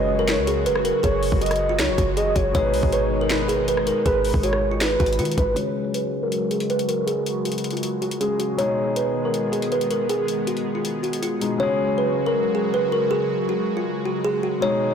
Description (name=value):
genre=hip hop, trap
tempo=159 BPM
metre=4/4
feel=half-time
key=unclear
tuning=A4 = 440 Hz
part: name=kalimba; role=melody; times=0.0-14.9 s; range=E#4 to C#5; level=-23 LUFS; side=right 1 dB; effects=low-pass filter, tape echo
part: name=warm velvety synth lead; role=second line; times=0.0-5.6 s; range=B4 to D#5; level=-25 LUFS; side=right 2 dB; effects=chorus, tape echo
part: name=dark grand piano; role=accompaniment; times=0.0-14.9 s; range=B2 to G#4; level=-29 LUFS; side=left 5 dB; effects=low-pass filter
part: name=airy breathy pad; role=sustained chords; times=0.0-14.9 s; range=B2 to G#4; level=-28 LUFS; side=equal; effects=chorus, low-pass filter
part: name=clean 808-style bass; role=bass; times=0.0-5.6 s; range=F#1 to D#3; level=-26 LUFS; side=equal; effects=none
part: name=trap drum kit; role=drums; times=0.3-11.5 s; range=hi-hat, kick drum, rim click, snare drum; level=-27 LUFS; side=equal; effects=none
room=light reverb, digital ambience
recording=blown-out, overdriven recording, overdrive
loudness=-20 LUFS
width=side -7 dB against mid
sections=0.0-5.6 A section; 5.6-11.6 B section; 11.6-14.9 A section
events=filter sweep 5.6-11.6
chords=0.0 F#sus2; 2.5 G#m; 5.6 F#sus2; 8.6 G#m; 11.6 F#sus2